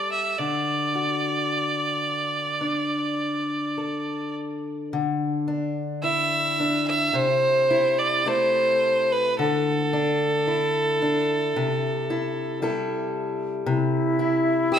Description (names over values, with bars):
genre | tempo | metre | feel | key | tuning
celtic folk, Celtic slow air | 54 BPM | 4/4 | uneven beats, rubato | D mixolydian | A4 = 443 Hz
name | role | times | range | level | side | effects
clear fiddle | melody | 0.0-14.8 s | A4 to E5 | -23 LUFS | right 1 dB | none
fingerpicked acoustic archtop guitar | accompaniment | 0.0-14.8 s | C3 to A4 | -26 LUFS | left 3 dB | none
wooden flute | second line | 13.7-14.8 s | E4 | -22 LUFS | right 1 dB | none
room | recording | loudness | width
moderate concert hall reverb, RT60 2.4 s | minimal, uncompressed stereo recording | -22 LUFS | side -8 dB against mid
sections
0.0-4.9 A section; 4.9-14.8 B section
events
none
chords
0.4 D; 4.9 Dsus2; 7.1 Am/C; 9.4 Dsus2; 11.5 C6